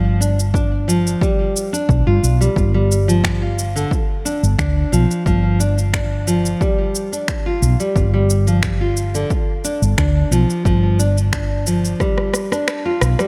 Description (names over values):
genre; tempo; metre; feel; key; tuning
organic downtempo; 89 BPM; 4/4; straight; unclear; A4 = 440 Hz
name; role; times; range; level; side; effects
nylon-string guitar; arpeggios; 0.0-13.3 s; D3 to F4; -22 LUFS; equal; delay, shimmer reverb
woody fretless electric bass; bass; 0.0-13.1 s; G1 to G2; -19 LUFS; equal; analog chorus
electronic shaker, finger snaps and rim click; drums; 0.2-13.3 s; none; -27 LUFS; equal; overdrive
electronic kick drum; drums; 0.5-12.1 s; none; -23 LUFS; equal; overdrive
room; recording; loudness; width
light reverb, digital ambience; none; -17 LUFS; mono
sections
0.0-13.3 A section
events
drum fill 12.0-13.3; kick drops out 12.7-13.3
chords
0.0 G7(no3)